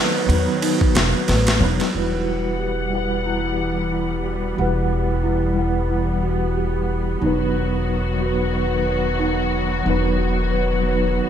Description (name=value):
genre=trip hop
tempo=91 BPM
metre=4/4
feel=swing 57% on 16ths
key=E harmonic minor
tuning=A4 = 442 Hz
part: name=mellow tine electric piano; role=accompaniment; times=0.0-11.3 s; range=F#3 to F#5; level=-24 LUFS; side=equal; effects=medium stereo tremolo, vintage 12-bit sampler grit, tape echo
part: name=muted studio string section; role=sustained chords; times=0.0-11.3 s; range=D#3 to F#5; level=-26 LUFS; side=left 1 dB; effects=low-pass filter
part: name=celesta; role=arpeggios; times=0.0-11.3 s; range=D#4 to B4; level=-26 LUFS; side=right 3 dB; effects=wide subtle chorus, low-pass filter, tape echo
part: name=upright bass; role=bass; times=0.3-11.2 s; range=E1 to E2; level=-23 LUFS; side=equal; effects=none
part: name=dusty soul sampler-style drum kit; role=drums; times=0.3-1.9 s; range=kick drum, ride cymbal, snare drum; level=-21 LUFS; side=equal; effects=overdrive, studio reverb, gated reverb
room=moderate plate reverb, RT60 2.2 s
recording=bright 1980s-style digital production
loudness=-18 LUFS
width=side -9 dB against mid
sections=0.0-1.9 A section; 1.9-11.3 B section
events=none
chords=0.0 B/E; 1.9 Emadd9; 7.2 B/E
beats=0.62 1.28 | 1.94 2.60 3.26 3.92 | 4.58 5.23 5.89 6.55 | 7.21 7.87 8.53 9.19 | 9.85 10.51 11.17